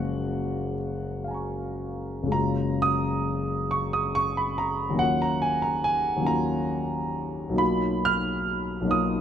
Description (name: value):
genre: classical, impressionist solo piano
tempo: 35-50 BPM (dotted quarters)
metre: 6/8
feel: rubato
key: F# major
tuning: A4 = 440 Hz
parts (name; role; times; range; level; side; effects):
- warm grand piano; solo; 0.0-9.2 s; F#1 to E#6; -24 LUFS; equal; none
room: light reverb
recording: none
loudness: -24 LUFS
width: side -9 dB against mid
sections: 0.0-2.3 A section; 2.3-9.2 A section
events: none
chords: 0.0 F#maj9; 2.3 F#sus2; 5.0 D#m9; 7.6 Bmaj7#11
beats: 0.77 | 2.34 3.72 | 5.00 6.28 | 7.61 8.92